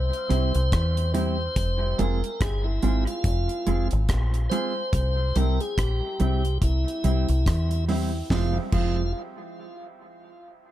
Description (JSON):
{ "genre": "dub reggae", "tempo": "71 BPM", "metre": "4/4", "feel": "swing 59% on 16ths", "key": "F harmonic minor", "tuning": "A4 = 436 Hz", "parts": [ { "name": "tonewheel organ", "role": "melody", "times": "0.0-9.1 s", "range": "E4 to C5", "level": "-31 LUFS", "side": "equal", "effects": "overdrive, slow rotary speaker, dub echo" }, { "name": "deep dub fingered electric bass", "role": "bass", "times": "0.0-9.1 s", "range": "F1 to E2", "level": "-24 LUFS", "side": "equal", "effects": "none" }, { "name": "deep reggae drum kit", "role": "drums", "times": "0.1-9.0 s", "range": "crash cymbal, hi-hat, kick drum, rim click, snare drum", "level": "-27 LUFS", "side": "equal", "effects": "none" }, { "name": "mellow electric guitar", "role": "accompaniment", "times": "0.3-9.0 s", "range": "F3 to Ab4", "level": "-30 LUFS", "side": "right 3 dB", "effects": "dub echo" } ], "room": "small room ambience", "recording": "none", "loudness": "-22 LUFS", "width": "side -13 dB against mid", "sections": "0.0-8.3 A section; 8.3-10.7 B section", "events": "none", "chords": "0.0 C; 1.6 Fm; 4.9 C; 8.3 Fm" }